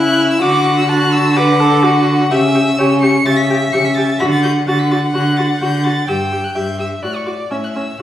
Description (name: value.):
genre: quick classical-period movement for string quartet.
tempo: 127 BPM.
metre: 4/4.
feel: straight.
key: D major.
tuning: A4 = 440 Hz.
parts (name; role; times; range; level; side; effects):
rich violin; melody; 0.0-8.0 s; C#6 to C#7; -20 LUFS; equal; none.
clear violin; second line; 0.0-8.0 s; C#5 to A5; -20 LUFS; left 3 dB; none.
clear viola; accompaniment; 0.0-8.0 s; C#4 to B4; -19 LUFS; left 1 dB; none.
rich cello; bass; 0.0-8.0 s; G2 to D3; -16 LUFS; right 1 dB; none.
room: wet recital hall reverb, RT60 1.3 s.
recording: studio reverb.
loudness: -12 LUFS.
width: side -12 dB against mid.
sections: 0.0-8.0 A section.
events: none.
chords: 0.4 D; 2.3 C#m7b5; 4.2 D; 6.1 Em/G; 7.0 D/A; 7.5 A.